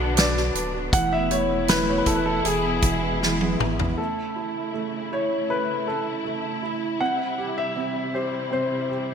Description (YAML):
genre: pop ballad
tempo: 79 BPM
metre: 4/4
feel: straight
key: unclear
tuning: A4 = 440 Hz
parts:
  - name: warm concert grand piano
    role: melody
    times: 0.0-9.1 s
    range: G#4 to F#5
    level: -26 LUFS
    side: left 2 dB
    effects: none
  - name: warm upright piano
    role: accompaniment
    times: 0.0-9.1 s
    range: B2 to B4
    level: -28 LUFS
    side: right 5 dB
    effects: lush chorus
  - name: warm studio string section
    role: sustained chords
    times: 0.0-9.1 s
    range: B2 to E4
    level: -30 LUFS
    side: left 3 dB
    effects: none
  - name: saturated sub bass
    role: bass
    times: 0.0-4.0 s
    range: D1 to B1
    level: -30 LUFS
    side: equal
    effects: none
  - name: natural country drum kit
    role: drums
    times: 0.2-4.0 s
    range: hi-hat, kick drum, snare drum, toms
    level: -23 LUFS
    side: equal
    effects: none
room: moderate lush hall reverb, RT60 1.9 s, small room ambience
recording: bright 1980s-style digital production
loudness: -22 LUFS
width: side -7 dB against mid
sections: 0.0-4.0 A section; 4.0-9.1 B section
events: drum fill 3.2-4.0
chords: 0.0 Bm; 0.9 Esus4; 2.4 E; 4.0 A; 7.0 C